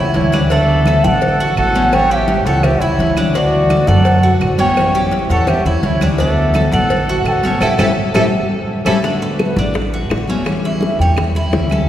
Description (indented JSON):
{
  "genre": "latin, Cuban son and guajira",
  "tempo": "169 BPM",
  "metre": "4/4",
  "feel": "straight",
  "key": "D major",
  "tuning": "A4 = 440 Hz",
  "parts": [
    { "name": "mellow bansuri", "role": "melody", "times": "0.0-11.9 s", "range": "B4 to G5", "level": "-18 LUFS", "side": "equal", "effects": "none" },
    { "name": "clear trumpet", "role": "second line", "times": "0.0-8.9 s", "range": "E4 to C#5", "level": "-22 LUFS", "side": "right 2 dB", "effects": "none" },
    { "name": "Cuban tres", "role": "arpeggios", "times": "0.0-11.9 s", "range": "C#4 to D5", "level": "-22 LUFS", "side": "right 1 dB", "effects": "none" },
    { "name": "upright bass", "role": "bass", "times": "0.0-11.9 s", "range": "A1 to F#2", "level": "-17 LUFS", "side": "equal", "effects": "none" },
    { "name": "picked steel-string acoustic guitar", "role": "accompaniment", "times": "0.1-11.9 s", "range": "D3 to F#4", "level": "-21 LUFS", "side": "left 2 dB", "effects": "none" },
    { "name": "cowbell and bongos", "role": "percussion", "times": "0.1-11.7 s", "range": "none", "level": "-24 LUFS", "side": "left 1 dB", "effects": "none" },
    { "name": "congas", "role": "percussion", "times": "0.2-11.9 s", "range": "none", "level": "-23 LUFS", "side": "equal", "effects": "none" },
    { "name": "claves", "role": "percussion", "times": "0.3-11.9 s", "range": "none", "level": "-31 LUFS", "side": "right 3 dB", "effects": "none" }
  ],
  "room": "wet cathedral reverb, RT60 4.2 s",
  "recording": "recorded in a church or concert hall, vinyl crackle",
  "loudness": "-12 LUFS",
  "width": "side -12 dB against mid",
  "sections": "0.0-9.0 A section; 9.0-11.9 B section",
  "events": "band accent 7.6-9.0",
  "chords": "0.0 A7 (rootless); 0.5 D6; 1.9 A7; 3.3 D6; 4.8 A7; 6.2 D6; 7.6 A7; 9.0 D6; 10.5 A7"
}